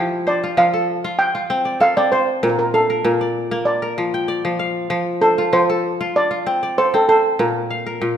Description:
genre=west african traditional, West African string and xylophone music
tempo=97 BPM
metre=4/4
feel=straight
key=F major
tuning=A4 = 441 Hz
part: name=kora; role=arpeggios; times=0.0-8.2 s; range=Bb2 to G5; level=-20 LUFS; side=left 2 dB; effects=none
part: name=steel pan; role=melody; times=0.3-8.2 s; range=A4 to G5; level=-17 LUFS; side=right 2 dB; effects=none
room=moderate recital hall reverb, RT60 1.7 s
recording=minimal, uncompressed stereo recording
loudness=-16 LUFS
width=side -9 dB against mid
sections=0.0-8.2 A section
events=none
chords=0.0 F; 2.4 Bb; 4.9 F; 7.4 Bb

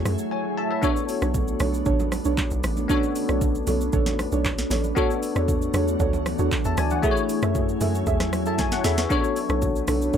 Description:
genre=amapiano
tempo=116 BPM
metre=4/4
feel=straight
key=B dorian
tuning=A4 = 441 Hz
part: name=bell-like tine electric piano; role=accompaniment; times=0.0-10.2 s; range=A3 to A5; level=-27 LUFS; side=left 6 dB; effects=ensemble chorus
part: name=glassy FM pad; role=sustained chords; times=0.0-10.2 s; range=E3 to G#5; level=-30 LUFS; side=right 1 dB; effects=ensemble chorus, built-in reverb, sidechain pumping
part: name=hollow log drum bass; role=bass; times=0.0-10.2 s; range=A1 to F#2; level=-26 LUFS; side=equal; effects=none
part: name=afro-pop drum kit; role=drums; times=0.1-10.2 s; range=handclaps, hi-hat, kick drum, rim click, shaker, snare drum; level=-27 LUFS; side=equal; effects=none
part: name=congas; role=percussion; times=0.1-10.2 s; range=none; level=-35 LUFS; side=right 3 dB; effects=none
part: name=deep mellow chord stab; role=stabs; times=0.8-10.2 s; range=D4 to E5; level=-28 LUFS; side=right 5 dB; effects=chorus, digital delay
room=little or no reverb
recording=none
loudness=-21 LUFS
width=side -8 dB against mid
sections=0.0-10.2 A section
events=drums muted 0.3-0.8; drum fill 8.6-9.1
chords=0.0 F#m9; 0.8 Bm9; 5.0 E13sus4; 7.0 F#m9; 9.1 Bm9

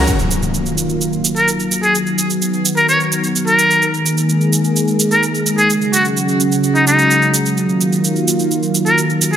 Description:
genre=EDM, festival progressive house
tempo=128 BPM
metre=4/4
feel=straight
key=Eb minor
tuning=A4 = 442 Hz
part: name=lush unison pad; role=sustained chords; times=0.0-9.4 s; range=Db3 to Ab4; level=-16 LUFS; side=equal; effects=chorus
part: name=shaker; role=drums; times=0.1-9.4 s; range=none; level=-20 LUFS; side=right 4 dB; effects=none
part: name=impact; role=sound effects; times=0.1-1.9 s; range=none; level=-22 LUFS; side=equal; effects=none
part: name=trumpet with metal mute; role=melody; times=1.4-9.4 s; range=Eb4 to Db5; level=-16 LUFS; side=equal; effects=tape echo
room=moderate lush hall reverb, RT60 2.0 s, digital ambience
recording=none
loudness=-12 LUFS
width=side -9 dB against mid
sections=0.1-9.4 A section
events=impact 0.1-1.9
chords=0.1 Ebmadd9; 1.9 B; 3.8 Absus2; 5.7 Dbsus4; 7.6 Ebmadd9

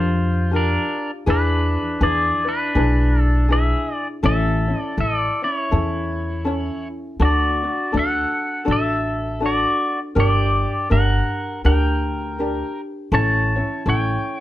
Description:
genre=Hawaiian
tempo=81 BPM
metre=4/4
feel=swing 61% on 8ths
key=D major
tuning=A4 = 440 Hz
part: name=pedal steel guitar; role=melody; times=0.0-14.4 s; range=D4 to A5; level=-22 LUFS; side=equal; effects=none
part: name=ukulele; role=accompaniment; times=0.0-14.4 s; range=C#4 to D5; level=-24 LUFS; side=left 1 dB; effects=none
part: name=upright bass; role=bass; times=0.0-14.1 s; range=G1 to F2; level=-20 LUFS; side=equal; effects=none
room=light reverb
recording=none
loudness=-18 LUFS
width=side -14 dB against mid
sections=0.0-14.4 A section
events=none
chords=0.0 Bb6; 1.3 E7; 4.2 A; 7.2 D; 10.2 Gm; 13.1 A

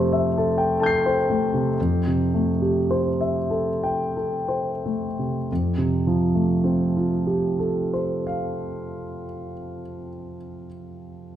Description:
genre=classical, impressionist solo piano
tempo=27-45 BPM (dotted quarters)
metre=6/8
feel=rubato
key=F major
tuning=A4 = 440 Hz
part: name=clear concert grand piano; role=solo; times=0.0-11.4 s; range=F2 to C7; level=-21 LUFS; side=equal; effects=none
room=wet recital hall reverb, RT60 1.6 s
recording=none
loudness=-20 LUFS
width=side -11 dB against mid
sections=0.0-5.5 A section; 5.5-9.2 B section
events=slowing down 0.0-5.5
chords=0.0 Fmaj9; 5.5 Fadd9

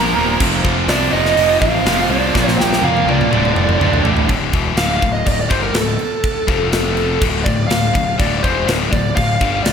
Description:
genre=heavy metal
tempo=123 BPM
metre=4/4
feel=straight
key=D minor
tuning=A4 = 440 Hz
part: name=bluesy overdriven lead guitar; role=melody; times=0.0-9.7 s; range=A4 to Bb5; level=-20 LUFS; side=right 1 dB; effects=distortion
part: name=bluesy overdriven lead guitar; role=second line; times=0.0-4.0 s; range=D4 to Bb4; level=-22 LUFS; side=right 5 dB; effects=distortion, slapback echo
part: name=high-gain distorted guitar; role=riff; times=0.0-9.7 s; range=D2 to Bb3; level=-20 LUFS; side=left 8 dB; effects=distortion, slapback echo
part: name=high-gain distorted guitar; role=riff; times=0.0-4.3 s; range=D2 to Bb3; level=-21 LUFS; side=right 10 dB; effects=distortion
part: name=tight distorted guitar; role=riff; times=0.0-4.3 s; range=D2 to Bb3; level=-25 LUFS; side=left 1 dB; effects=none
part: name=fuzz picked electric bass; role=bass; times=0.0-9.7 s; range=D1 to F2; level=-22 LUFS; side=equal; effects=overdrive
part: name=tight metal drum kit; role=drums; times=0.4-9.7 s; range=crash cymbal, hi-hat, kick drum, snare drum, toms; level=-19 LUFS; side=equal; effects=none
room=moderate concert hall reverb, RT60 1.9 s, small room ambience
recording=big arena sound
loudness=-13 LUFS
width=side -7 dB against mid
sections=0.0-4.3 A section; 4.3-9.7 B section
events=drum fill 2.3-4.3; lead electric guitar solo 4.3-9.7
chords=0.4 F5; 2.3 Bb5; 3.3 Dm; 4.3 D5; 6.5 F5; 7.2 Dm

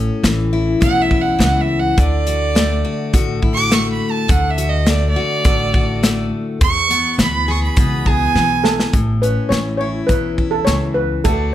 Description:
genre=honky-tonk and classic country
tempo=104 BPM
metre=4/4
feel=straight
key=A major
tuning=A4 = 440 Hz
part: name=picked steel-string acoustic guitar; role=accompaniment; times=0.0-11.5 s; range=E2 to G#4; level=-20 LUFS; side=left 4 dB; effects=none
part: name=upright bass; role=bass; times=0.0-11.5 s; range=A1 to E2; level=-20 LUFS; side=equal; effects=none
part: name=natural country drum kit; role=drums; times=0.2-11.4 s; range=hi-hat, kick drum, snare drum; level=-17 LUFS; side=equal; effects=none
part: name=clear fiddle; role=second line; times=0.8-8.9 s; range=D5 to D6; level=-19 LUFS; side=right 4 dB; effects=none
part: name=steel pan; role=melody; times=8.6-11.5 s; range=A4 to C#5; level=-20 LUFS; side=right 2 dB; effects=none
room=light reverb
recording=none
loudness=-14 LUFS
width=side -12 dB against mid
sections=0.0-8.9 A section; 8.9-11.5 B section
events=fiddle solo 0.0-8.9; drum fill 8.3-8.9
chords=0.0 A; 2.0 D; 6.6 E; 8.9 A

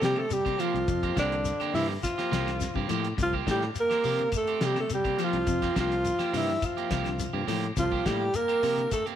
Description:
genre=afrobeat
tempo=104 BPM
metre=4/4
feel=straight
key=unclear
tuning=A4 = 440 Hz
part: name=breathy alto saxophone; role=melody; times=0.0-9.1 s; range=D4 to Bb4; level=-28 LUFS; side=equal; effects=none
part: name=warm trombone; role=second line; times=0.0-9.0 s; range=D3 to Bb3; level=-36 LUFS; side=right 9 dB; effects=none
part: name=semi-hollow electric guitar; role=arpeggios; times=0.0-9.0 s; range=C3 to F3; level=-37 LUFS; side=left 10 dB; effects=ensemble chorus
part: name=electric guitar at the edge of break-up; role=stabs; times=0.0-9.2 s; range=F3 to G4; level=-34 LUFS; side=right 10 dB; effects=none
part: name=fingered electric bass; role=bass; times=0.0-8.9 s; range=C2 to C3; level=-32 LUFS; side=left 1 dB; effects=none
part: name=cloth-damped thuddy drum kit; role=drums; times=0.0-9.2 s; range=hi-hat, kick drum, snare drum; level=-34 LUFS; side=left 1 dB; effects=none
part: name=shekere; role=percussion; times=0.0-9.1 s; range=none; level=-39 LUFS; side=left 6 dB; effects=none
part: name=claves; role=percussion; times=0.2-9.1 s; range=none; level=-45 LUFS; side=left 12 dB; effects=none
room=light reverb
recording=1960s-style stereo with parts hard left and right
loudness=-25 LUFS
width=side -10 dB against mid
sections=0.0-9.2 A section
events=none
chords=0.0 C7sus4

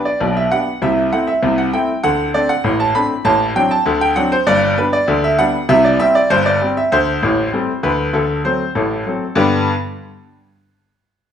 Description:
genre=ragtime piano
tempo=98 BPM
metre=2/4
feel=straight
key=G major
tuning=A4 = 439 Hz
part: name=bright baby grand piano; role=solo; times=0.0-9.7 s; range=G1 to B5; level=-14 LUFS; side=equal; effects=none
room=wet large studio reverb, RT60 1.2 s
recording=band playing live in one room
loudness=-13 LUFS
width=side -8 dB against mid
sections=0.0-9.4 A section; 9.4-10.6 B section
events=none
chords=0.0 G/B; 0.8 Am/C; 2.0 D5; 3.3 D7/A; 4.5 G; 5.7 C5; 6.9 D7sus4; 8.1 D7; 9.4 G

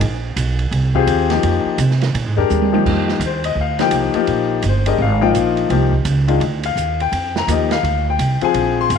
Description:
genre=modal jazz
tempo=169 BPM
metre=4/4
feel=swing 64% on 8ths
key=F dorian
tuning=A4 = 442 Hz
part: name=upright bass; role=bass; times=0.0-9.0 s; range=G1 to B#2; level=-18 LUFS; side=right 2 dB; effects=none
part: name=open jazz drum kit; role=drums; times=0.0-9.0 s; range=crash cymbal, hi-hat, kick drum, ride cymbal, snare drum, toms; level=-24 LUFS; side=right 9 dB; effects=none
part: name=clear baby grand piano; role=accompaniment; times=0.9-9.0 s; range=Eb3 to C6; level=-18 LUFS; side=left 9 dB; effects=none
room=moderate echo chamber reverb, RT60 1.7 s, small room ambience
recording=1960s-style stereo with parts hard left and right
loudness=-15 LUFS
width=side -6 dB against mid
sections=0.0-2.9 A section; 2.9-9.0 B section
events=drum fill 2.5-2.9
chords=0.0 A#9sus4; 2.9 F13sus4

